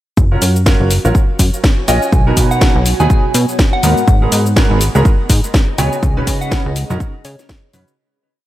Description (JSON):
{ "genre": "piano house", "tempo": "123 BPM", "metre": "4/4", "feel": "swing 58% on 16ths", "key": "F# major", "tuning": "A4 = 440 Hz", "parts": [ { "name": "plucky analog bass", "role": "bass", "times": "0.2-7.8 s", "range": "F#1 to C#3", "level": "-15 LUFS", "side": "equal", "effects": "sidechain pumping" }, { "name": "electronic kick drum", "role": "drums", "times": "0.2-7.6 s", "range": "none", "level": "-13 LUFS", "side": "equal", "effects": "none" }, { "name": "house drum kit", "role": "drums", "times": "0.2-8.0 s", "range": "hi-hat, shaker, snare drum", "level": "-19 LUFS", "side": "left 1 dB", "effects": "none" }, { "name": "granular cloud pad", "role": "texture", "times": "1.0-8.0 s", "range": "B3 to A#5", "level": "-26 LUFS", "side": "equal", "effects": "built-in reverb, lush chorus, sidechain pumping" }, { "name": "clear upright piano", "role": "riff", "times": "0.3-7.9 s", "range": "G#2 to D#5", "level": "-19 LUFS", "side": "right 2 dB", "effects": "lush chorus, sidechain pumping, tape echo" }, { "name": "soft synth bell", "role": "melody", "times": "1.9-7.6 s", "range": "C#5 to G#5", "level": "-22 LUFS", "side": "left 1 dB", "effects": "chorus, phaser, tape echo" } ], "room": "light reverb", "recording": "none", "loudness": "-11 LUFS", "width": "side -14 dB against mid", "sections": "0.2-8.0 groove", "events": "fade-out 5.4-8.0", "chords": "0.2 F#maj7; 2.1 Bmaj7; 4.1 G#m9; 6.0 C#9sus4" }